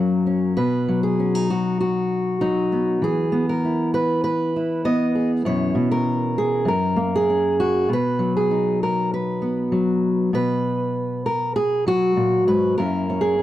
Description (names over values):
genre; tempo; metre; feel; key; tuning
folk, solo fingerstyle acoustic guitar; 98 BPM; 4/4; straight; B major; A4 = 440 Hz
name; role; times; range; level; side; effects
fingerpicked steel-string acoustic guitar; solo; 0.0-13.4 s; F#2 to D#5; -18 LUFS; equal; none
room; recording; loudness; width
light reverb; dark, warm production; -19 LUFS; side -13 dB against mid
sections
0.0-10.3 A section; 10.3-13.4 B section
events
none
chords
0.0 F#; 0.6 B; 3.0 E; 5.5 F#7sus4; 6.7 F#7; 7.9 B; 10.3 B5; 12.8 F#7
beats
| 0.57 1.19 1.80 2.41 | 3.02 3.63 4.24 4.85 | 5.46 6.06 6.67 7.28 | 7.89 8.50 9.11 9.72 | 10.34 10.96 11.57 12.18 | 12.79 13.40